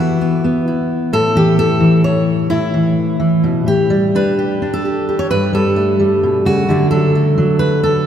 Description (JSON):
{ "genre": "folk, solo fingerstyle acoustic guitar", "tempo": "130 BPM", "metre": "3/4", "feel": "straight", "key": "A mixolydian", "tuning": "A4 = 440 Hz", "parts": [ { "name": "fingerpicked steel-string acoustic guitar", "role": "solo", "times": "0.0-8.1 s", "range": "G2 to C#5", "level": "-12 LUFS", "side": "equal", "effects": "none" } ], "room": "wet church reverb, RT60 3.8 s", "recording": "recorded in a church or concert hall", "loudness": "-12 LUFS", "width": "side -9 dB against mid", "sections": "0.0-8.1 A section", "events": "none", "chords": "0.0 Esus2; 1.1 A; 3.9 Gadd9; 6.7 D", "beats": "0.21 0.67 | 1.13 1.58 2.04 | 2.50 2.96 3.43 | 3.90 4.38 4.85 | 5.31 5.77 6.23 | 6.69 7.15 7.61" }